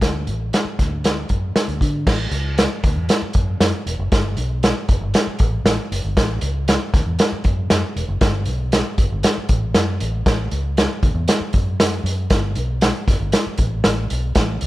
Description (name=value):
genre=uptempo 1960s-style soul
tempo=117 BPM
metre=4/4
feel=straight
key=unclear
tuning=A4 = 440 Hz
part: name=vintage muted fingered electric bass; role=bass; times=0.0-14.7 s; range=E1 to D3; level=-22 LUFS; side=equal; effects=none
part: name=vintage drum kit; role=drums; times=0.0-14.7 s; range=crash cymbal, hi-hat, kick drum, snare drum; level=-18 LUFS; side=equal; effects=none
room=little or no reverb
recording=none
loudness=-17 LUFS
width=side -17 dB against mid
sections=0.0-2.1 A section; 2.1-14.7 B section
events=none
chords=none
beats=| 0.01 0.53 1.04 1.56 | 2.07 2.58 3.10 3.61 | 4.12 4.63 5.14 5.66 | 6.17 6.68 7.19 7.70 | 8.22 8.73 9.24 9.75 | 10.27 10.78 11.29 11.80 | 12.31 12.83 13.34 13.85 | 14.37